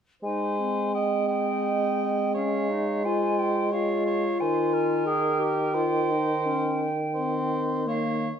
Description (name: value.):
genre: classical.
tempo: 87 BPM.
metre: 3/4.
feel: uneven beats, rubato.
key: Ab major.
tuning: A4 = 435 Hz.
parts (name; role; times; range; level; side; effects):
silver concert flute; second line; 0.2-8.3 s; F5 to Ab5; -31 LUFS; equal; none.
warm clarinet; second line; 0.2-8.3 s; Bb3 to Ab4; -29 LUFS; left 3 dB; none.
warm cor anglais; second line; 0.2-8.3 s; Bb4 to Eb5; -31 LUFS; right 4 dB; none.
dark bassoon; accompaniment; 0.2-8.3 s; Eb3 to Ab3; -28 LUFS; right 1 dB; none.
room: wet stone room reverb, RT60 1.1 s.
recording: none.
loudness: -23 LUFS.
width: side -8 dB against mid.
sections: 0.2-8.4 A section.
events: none.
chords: 0.2 Ab; 4.4 Ab/Eb.